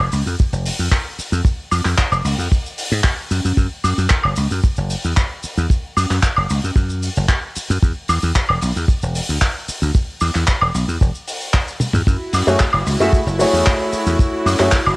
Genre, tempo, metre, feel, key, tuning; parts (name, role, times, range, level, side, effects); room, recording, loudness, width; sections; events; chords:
nu-disco, nu disco; 113 BPM; 4/4; straight; F# minor; A4 = 440 Hz
dry thumbed slap bass; bass; 0.0-14.9 s; E1 to G#2; -18 LUFS; equal; sidechain pumping
damped 70s drum kit; drums; 0.1-15.0 s; handclaps, hi-hat, shaker, toms, woodblock; -21 LUFS; equal; studio reverb, cassette tape
kick drum; drums; 0.4-14.8 s; -16 LUFS; equal; studio reverb, cassette tape
rich studio string section; sustained chords; 12.1-15.0 s; E4 to F#4; -24 LUFS; right 1 dB; sidechain pumping, cassette tape
clear grand piano; accompaniment; 12.5-14.7 s; A3 to E5; -18 LUFS; equal; sidechain pumping, cassette tape
light reverb, small room ambience; home recording on cassette; -15 LUFS; side -25 dB against mid
0.0-15.0 A section
drum fill 11.8
0.0 N.C.; 3.3 F#5; 7.8 E5; 12.1 F#m9